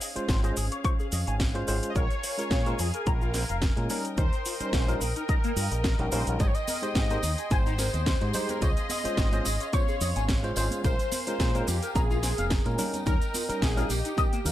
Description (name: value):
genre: nu-disco, nu disco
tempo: 108 BPM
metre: 4/4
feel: swing 54% on 16ths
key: unclear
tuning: A4 = 440 Hz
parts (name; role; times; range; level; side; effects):
- dark studio string section; sustained chords; 0.0-14.5 s; Db4 to C6; -39 LUFS; left 2 dB; sidechain pumping
- electric guitar with an envelope filter; riff; 0.0-14.5 s; Bb3 to Db6; -35 LUFS; left 4 dB; ensemble chorus, vintage 12-bit sampler grit
- house drum kit; drums; 0.0-14.5 s; cabasa, hi-hat, snare drum; -33 LUFS; equal; none
- tine electric piano; accompaniment; 0.2-14.5 s; G3 to C5; -34 LUFS; equal; fast tremolo, vintage 12-bit sampler grit
- fingered electric bass with an envelope filter; bass; 0.2-14.5 s; F1 to Bb2; -30 LUFS; equal; tube saturation
- electronic kick drum; drums; 0.3-14.3 s; none; -27 LUFS; equal; none
- wide unison lead; melody; 1.9-14.5 s; G4 to Eb5; -33 LUFS; equal; lush chorus, digital delay
- tambourine and congas; percussion; 6.4-14.5 s; none; -38 LUFS; right 4 dB; none
room: little or no reverb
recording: none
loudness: -25 LUFS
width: side -13 dB against mid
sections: 0.0-14.5 A section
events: none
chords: 0.0 Dbmaj7; 2.0 Bbm7; 3.9 Eb7; 6.4 Abmaj7; 8.6 Dbmaj7; 10.8 Bbm7; 12.8 Eb7